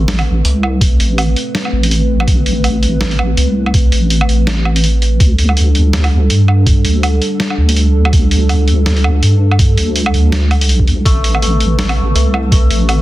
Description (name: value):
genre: half-time drum and bass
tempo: 164 BPM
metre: 4/4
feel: swing 57% on 16ths, half-time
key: A minor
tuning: A4 = 440 Hz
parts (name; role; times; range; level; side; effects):
- dark analog pad; sustained chords; 0.0-13.0 s; G3 to B4; -19 LUFS; equal; chorus, sidechain pumping
- santur; arpeggios; 0.0-3.1, 11.1-13.0 s; A3 to C4; -24 LUFS; left 5 dB; digital delay
- deep soft wobble bass; bass; 0.0-13.0 s; A1 to G2; -12 LUFS; equal; chorus
- boom bap sampler-style drum kit; drums; 0.1-13.0 s; hi-hat, snare drum, woodblock; -18 LUFS; right 1 dB; none
- electronic kick drum; drums; 0.8-12.6 s; none; -12 LUFS; equal; none
room: digital ambience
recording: dense, heavily limited modern master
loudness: -10 LUFS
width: side -16 dB against mid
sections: 0.0-13.0 A section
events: none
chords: 0.0 Amadd9; 5.2 Dsus4; 11.1 Amadd9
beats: 0.08 0.45 | 0.81 1.18 1.54 1.91 | 2.28 2.64 3.01 3.37 | 3.74 4.11 4.47 4.84 | 5.20 5.57 5.93 6.30 | 6.67 7.03 7.40 7.76 | 8.13 8.50 8.86 9.23 | 9.59 9.96 10.32 10.69 | 11.06 11.42 11.79 12.15 | 12.52 12.89